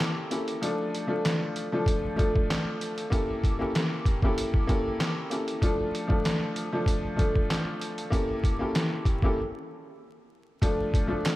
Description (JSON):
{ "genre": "hip hop, boom-bap hip-hop", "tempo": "96 BPM", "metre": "4/4", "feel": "swing 54% on 16ths", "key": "D harmonic minor", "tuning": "A4 = 440 Hz", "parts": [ { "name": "clear upright piano", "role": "accompaniment", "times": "0.0-11.4 s", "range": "F3 to A4", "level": "-29 LUFS", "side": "left 1 dB", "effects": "cassette tape, high-pass filter, low-pass filter" }, { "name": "trip hop sampler-style drum kit", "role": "drums", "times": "0.0-11.4 s", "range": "handclaps, hi-hat, kick drum, snare drum", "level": "-27 LUFS", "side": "equal", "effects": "none" }, { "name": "finger snap", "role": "percussion", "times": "11.2-11.4 s", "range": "none", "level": "-38 LUFS", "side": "right 6 dB", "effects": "none" } ], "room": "moderate plate reverb, RT60 2.9 s", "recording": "dreamy mix soaked in reverb, vinyl crackle", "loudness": "-25 LUFS", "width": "side -17 dB against mid", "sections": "0.0-10.6 A section", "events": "kick muted 0.6-1.9; break 9.4-10.6", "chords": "0.0 A7b9; 0.6 Dm; 3.1 A7b9; 5.6 Dm; 8.1 A7b9; 10.6 Dm" }